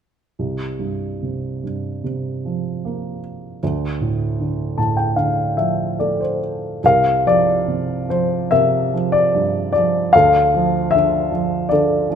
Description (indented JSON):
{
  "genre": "classical, lyrical solo piano",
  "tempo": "74 BPM",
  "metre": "4/4",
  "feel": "uneven beats, rubato",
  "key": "unclear",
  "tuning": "A4 = 440 Hz",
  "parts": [
    { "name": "dark baby grand piano", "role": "solo", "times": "0.4-12.2 s", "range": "C2 to A5", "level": "-16 LUFS", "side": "equal", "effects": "none" }
  ],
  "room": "moderate scoring stage reverb, RT60 1.7 s",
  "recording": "minimal, uncompressed stereo recording",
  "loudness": "-16 LUFS",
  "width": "side -8 dB against mid",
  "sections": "0.4-6.8 A section; 6.8-12.2 B section",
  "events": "grand piano fill 4.4-6.8",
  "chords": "0.4 C7sus4; 3.6 Dm11; 6.8 C9sus4; 10.1 Dmadd9"
}